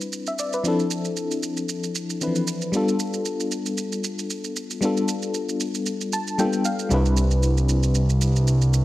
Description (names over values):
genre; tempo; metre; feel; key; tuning
amapiano; 115 BPM; 4/4; swing 55% on 16ths; unclear; A4 = 440 Hz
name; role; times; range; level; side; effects
FM electric piano with tremolo; accompaniment; 0.0-8.8 s; E3 to A5; -24 LUFS; left 2 dB; none
shaker; drums; 0.0-8.8 s; none; -31 LUFS; right 6 dB; none
fat analog bass; bass; 6.9-8.8 s; C2; -18 LUFS; right 1 dB; none
room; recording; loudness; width
digital ambience; none; -21 LUFS; side -16 dB against mid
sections
0.0-8.8 A section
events
FM electric piano fill 5.9-6.9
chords
0.0 Cmaj9; 0.6 Dm7; 2.7 G9; 6.9 Cmaj9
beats
0.12 | 0.65 1.17 1.69 2.21 | 2.73 3.25 3.78 4.30 | 4.82 5.34 5.86 6.39 | 6.91 7.43 7.95 8.47